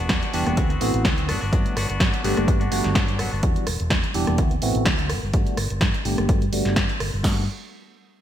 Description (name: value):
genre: filtered disco house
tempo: 126 BPM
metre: 4/4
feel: swing 54% on 16ths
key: G major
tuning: A4 = 438 Hz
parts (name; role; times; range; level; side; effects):
- semi-hollow electric guitar; riff; 0.0-3.4 s; E3 to F#4; -30 LUFS; left 3 dB; vintage 12-bit sampler grit, sidechain pumping, low-pass filter
- fingered electric bass; bass; 0.0-7.5 s; E1 to G2; -26 LUFS; equal; sidechain pumping, low-pass filter
- punchy analog drum machine; drums; 0.1-7.4 s; crash cymbal, kick drum, snare drum; -22 LUFS; equal; overdrive
- punchy analog drum machine; drums; 0.1-7.1 s; hi-hat, rim click, snare drum; -26 LUFS; equal; gated reverb
- egg shaker and congas; percussion; 0.1-7.2 s; none; -32 LUFS; left 3 dB; none
- bell-like tine electric piano; accompaniment; 0.3-7.4 s; E3 to G4; -27 LUFS; right 1 dB; phaser, vintage 12-bit sampler grit, sidechain pumping, low-pass filter
room: light reverb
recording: bright 1980s-style digital production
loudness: -19 LUFS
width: side -11 dB against mid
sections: 0.0-7.2 A section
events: filter sweep on fingered electric bass 0.0-7.2; filter sweep 0.0-7.2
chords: 0.0 Em9; 0.6 D13; 1.3 Gmaj7; 3.4 Em9; 4.4 D13; 5.1 Gmaj7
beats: 0.10 0.58 1.05 | 1.53 2.00 2.48 2.96 | 3.43 3.91 4.38 4.86 | 5.34 5.81 6.29 6.77 | 7.24